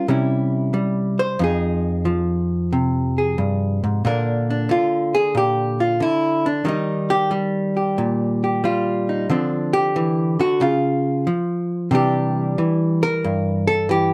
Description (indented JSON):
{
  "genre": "solo jazz",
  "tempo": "91 BPM",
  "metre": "4/4",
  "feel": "swing 68% on 8ths",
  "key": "unclear",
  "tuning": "A4 = 440 Hz",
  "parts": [
    { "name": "hollow-body jazz guitar", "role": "solo", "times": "0.0-14.1 s", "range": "F2 to C5", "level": "-20 LUFS", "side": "equal", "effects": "none" }
  ],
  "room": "light reverb",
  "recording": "dark, warm production",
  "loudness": "-20 LUFS",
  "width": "mono",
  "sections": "0.0-14.1 A section",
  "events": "hollow-body jazz guitar solo 0.0-14.1",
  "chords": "0.1 C; 1.4 Fm9; 4.0 Bb; 6.7 Eb; 9.3 Dm7; 10.6 Db; 11.9 Cadd9"
}